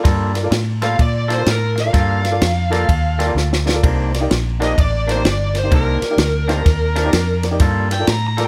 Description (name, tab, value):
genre	electric blues shuffle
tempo	127 BPM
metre	4/4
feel	swing 64% on 8ths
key	G minor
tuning	A4 = 440 Hz
part	warm upright piano	accompaniment	0.0-8.5 s	Eb4 to Bb5	-27 LUFS	equal	none
part	electric guitar through a small old amp	riff	0.0-8.5 s	C3 to A4	-27 LUFS	equal	spring reverb
part	vintage muted fingered electric bass	bass	0.1-8.5 s	G1 to Bb2	-21 LUFS	equal	none
part	compact cocktail drum kit	drums	0.1-8.5 s	kick drum, ride cymbal, snare drum	-21 LUFS	equal	none
part	smooth overdriven lead guitar	melody	0.8-8.5 s	Bb4 to Bb5	-24 LUFS	equal	none
room	light reverb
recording	none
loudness	-17 LUFS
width	mono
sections	0.0-8.5 A section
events	upright piano fill 2.4-3.8; drum fill 3.4-3.8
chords	0.0 Gm9; 3.8 Cm9; 7.6 Gm9